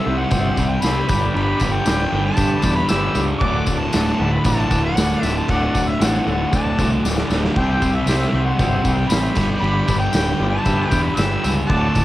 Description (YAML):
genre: garage rock duo or trio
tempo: 116 BPM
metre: 4/4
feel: straight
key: unclear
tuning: A4 = 440 Hz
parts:
  - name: warm harmonica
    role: melody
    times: 0.0-12.0 s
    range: E5 to E6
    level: -24 LUFS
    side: left 1 dB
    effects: overdrive, cassette tape
  - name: combo organ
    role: sustained chords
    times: 0.0-12.0 s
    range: F#4 to F#5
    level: -28 LUFS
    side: left 1 dB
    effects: cassette tape
  - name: thick fuzz guitar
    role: riff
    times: 0.0-12.0 s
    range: D2 to C4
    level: -20 LUFS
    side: equal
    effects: distortion, cassette tape
  - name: growling fingered electric bass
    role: bass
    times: 0.1-12.0 s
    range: D1 to G2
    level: -23 LUFS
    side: equal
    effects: overdrive
  - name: oversized low-tuned drum kit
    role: drums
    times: 0.3-12.0 s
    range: crash cymbal, kick drum, snare drum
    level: -22 LUFS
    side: equal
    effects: cassette tape
  - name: tambourine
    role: percussion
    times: 0.3-12.0 s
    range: none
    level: -32 LUFS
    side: left 4 dB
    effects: none
room: moderate booth ambience, RT60 0.2 s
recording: home recording on cassette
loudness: -16 LUFS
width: side -15 dB against mid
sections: 0.0-12.0 A section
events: drum fill 7.0-7.6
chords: 0.0 C; 1.1 G; 3.4 D; 7.6 C; 9.4 G